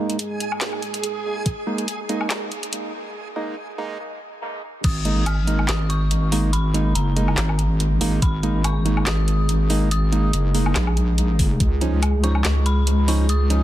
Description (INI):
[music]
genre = deep dubstep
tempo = 142 BPM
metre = 4/4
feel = swing 55% on 16ths, half-time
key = G# dorian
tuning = A4 = 441 Hz
[part]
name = dark analog pad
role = sustained chords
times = 0.0-13.6 s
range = G#3 to G#4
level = -31 LUFS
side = left 1 dB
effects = chorus
[part]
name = percussive organ stab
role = stabs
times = 0.0-13.6 s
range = E#3 to D#4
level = -27 LUFS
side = right 2 dB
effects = chorus, dub echo
[part]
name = backwards swelling texture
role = texture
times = 0.0-3.1 s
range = G#4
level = -31 LUFS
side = right 4 dB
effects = built-in reverb
[part]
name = garage drum kit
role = drums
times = 0.1-13.6 s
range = crash cymbal, handclaps, hi-hat, snare drum, woodblock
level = -28 LUFS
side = left 1 dB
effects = high-pass filter on perc, high-pass filter on snare, high-pass filter on hats, high-pass filter on cymbals, high-pass filter on room
[part]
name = electronic kick drum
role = drums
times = 1.5-1.6, 4.8-4.9, 8.2-8.3, 11.4-11.7 s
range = none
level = -20 LUFS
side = equal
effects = none
[part]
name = dark detuned synth bell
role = melody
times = 4.8-13.6 s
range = A#5 to E#6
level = -31 LUFS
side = left 2 dB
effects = chorus, dub echo
[part]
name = wobble bass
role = bass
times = 4.8-13.6 s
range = F#1 to C#2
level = -19 LUFS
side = equal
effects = chorus
[sound]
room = little or no reverb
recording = dense, heavily limited modern master, high-pass filter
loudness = -18 LUFS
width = side -14 dB against mid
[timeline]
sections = 0.0-4.8 A section; 4.8-13.6 B section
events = build-up 0.0-4.8; filter sweep on synth stab 0.0-4.8; filter sweep 0.0-4.8; break 3.2-4.8; drop 4.8-13.6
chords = 0.0 G#sus2; 11.6 C#add9